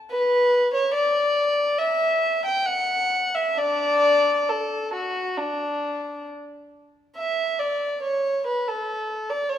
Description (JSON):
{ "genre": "classical, baroque-style suite movement for unaccompanied violin", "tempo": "65-72 BPM", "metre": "4/4", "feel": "rubato", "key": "D major", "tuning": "A4 = 436 Hz", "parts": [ { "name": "dark violin", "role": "solo", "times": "0.1-9.6 s", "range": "D4 to G5", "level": "-21 LUFS", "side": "equal", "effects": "none" } ], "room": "wet recital hall reverb, RT60 1.7 s", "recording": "none", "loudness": "-21 LUFS", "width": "side -10 dB against mid", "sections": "0.0-7.2 A section; 7.2-9.6 A section", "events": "none", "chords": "none" }